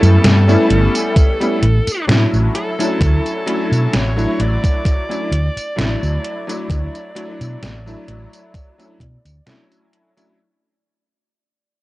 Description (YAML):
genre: vaporwave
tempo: 65 BPM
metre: 4/4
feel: swing 54% on 16ths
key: D major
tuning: A4 = 440 Hz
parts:
  - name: bluesy overdriven lead guitar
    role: melody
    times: 0.0-9.4 s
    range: A4 to D5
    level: -24 LUFS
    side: equal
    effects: distortion, tape echo
  - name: clear electric grand piano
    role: accompaniment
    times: 0.0-10.4 s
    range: F#3 to E4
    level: -20 LUFS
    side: left 1 dB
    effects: ensemble chorus
  - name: hollow-body short-scale fingered electric bass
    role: bass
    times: 0.0-9.4 s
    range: G1 to B2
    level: -15 LUFS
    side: equal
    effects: none
  - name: detuned 8-bit digital drum machine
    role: drums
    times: 0.0-10.3 s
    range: hi-hat, snare drum, tambourine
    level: -20 LUFS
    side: equal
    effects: vintage 12-bit sampler grit
  - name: electronic kick drum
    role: drums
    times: 1.2-9.2 s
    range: none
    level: -14 LUFS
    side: equal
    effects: overdrive, vintage 12-bit sampler grit
room: little or no reverb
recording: dry, gritty hardware recording, cassette tape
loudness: -14 LUFS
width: side -18 dB against mid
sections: 0.0-10.4 A section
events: fade-out 0.5-10.4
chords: 0.0 A7; 2.5 Dmaj7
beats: 0.24 1.16 2.09 | 3.01 3.93 4.86 5.78 | 6.70 7.62 8.55 9.47